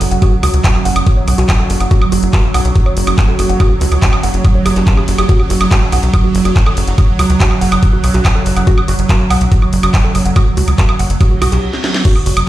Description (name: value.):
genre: psychedelic trance.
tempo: 142 BPM.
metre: 4/4.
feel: straight.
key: unclear.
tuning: A4 = 441 Hz.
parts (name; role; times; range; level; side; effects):
evolving wavetable pad; sustained chords; 0.0-12.5 s; F#3; -18 LUFS; right 3 dB; ensemble chorus, built-in reverb, sidechain pumping.
tight sequencer bass; bass; 0.0-12.4 s; F#1 to C#2; -14 LUFS; equal; none.
drum and bass drum kit; drums; 0.0-12.5 s; crash cymbal, handclaps, hi-hat, snare drum, woodblock; -19 LUFS; right 1 dB; none.
warbly tape-like pad; texture; 0.0-12.5 s; C#4 to F#6; -26 LUFS; left 1 dB; chorus, built-in reverb, phaser, sidechain pumping.
woody wave-folded pluck; riff; 0.1-12.4 s; F#4 to F#5; -22 LUFS; moving between left 3 dB and right 5 dB; chorus, auto-pan, sidechain pumping, digital delay.
electronic kick drum; drums; 0.2-12.1 s; none; -10 LUFS; equal; none.
reverse cymbal; sound effects; 11.4-12.1 s; none; -25 LUFS; right 3 dB; none.
room: light reverb.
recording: played on a big sound system in a bare room, stone room reverb.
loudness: -10 LUFS.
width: side -14 dB against mid.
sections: 0.0-12.1 A section.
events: reverse cymbal 11.4-12.1; break 11.6-12.1; drum fill 11.7-12.1.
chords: 0.0 F#5.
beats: | 0.22 0.64 1.06 1.49 | 1.91 2.33 2.75 3.18 | 3.60 4.02 4.45 4.87 | 5.29 5.71 6.13 6.56 | 6.98 7.40 7.83 8.25 | 8.67 9.09 9.52 9.94 | 10.36 10.78 11.21 11.63 | 12.05 12.47.